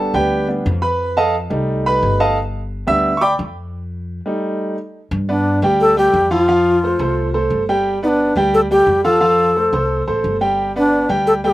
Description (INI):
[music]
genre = latin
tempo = 175 BPM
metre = 4/4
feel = straight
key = G major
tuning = A4 = 440 Hz
[part]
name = warm concert grand piano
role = accompaniment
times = 0.0-11.5 s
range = F3 to E6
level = -17 LUFS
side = right 1 dB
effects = slapback echo
[part]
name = upright bass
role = bass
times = 0.0-11.5 s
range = G1 to G2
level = -23 LUFS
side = equal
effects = none
[part]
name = bright bass bansuri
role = melody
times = 5.3-11.5 s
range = D4 to A4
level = -15 LUFS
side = left 1 dB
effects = none
[sound]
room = little or no reverb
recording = recorded outdoors, with no room sound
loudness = -14 LUFS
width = side -16 dB against mid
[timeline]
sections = 0.0-5.1 A section; 5.1-11.5 B section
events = grand piano solo 0.0-5.1; break 3.7-5.1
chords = 0.0 G; 1.0 F7; 2.4 G; 3.7 F7; 5.1 G; 6.5 F; 7.8 G; 9.2 F; 10.6 G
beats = 0.32 0.66 | 1.00 1.34 1.69 2.03 | 2.37 2.71 3.06 3.40 | 3.74 4.08 4.43 4.77 | 5.11 5.45 5.80 6.14 | 6.48 6.82 7.17 7.51 | 7.85 8.19 8.53 8.88 | 9.22 9.56 9.90 10.24 | 10.59 10.93 11.27